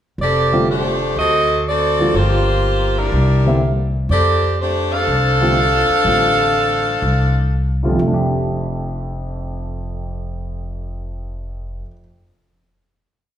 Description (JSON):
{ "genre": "jazz, big band swing", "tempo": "123 BPM", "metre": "4/4", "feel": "swing 68% on 8ths", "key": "F major", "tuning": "A4 = 440 Hz", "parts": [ { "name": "bright saxophone section", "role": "melody", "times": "0.2-7.5 s", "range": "G3 to F5", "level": "-16 LUFS", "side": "equal", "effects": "none" }, { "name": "upright bass", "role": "bass", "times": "0.2-11.8 s", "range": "F1 to F2", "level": "-20 LUFS", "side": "equal", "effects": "none" }, { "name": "dark upright piano", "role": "accompaniment", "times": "0.5-12.0 s", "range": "F2 to G4", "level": "-22 LUFS", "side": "right 1 dB", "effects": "none" } ], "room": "wet recital hall reverb, RT60 1.4 s", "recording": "recorded in a church or concert hall", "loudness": "-14 LUFS", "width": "side -10 dB against mid", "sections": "0.2-8.0 A section; 8.0-11.9 final chord", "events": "none", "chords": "0.2 F69; 1.2 D7b9; 2.1 Gm7; 3.1 C9; 4.1 F69" }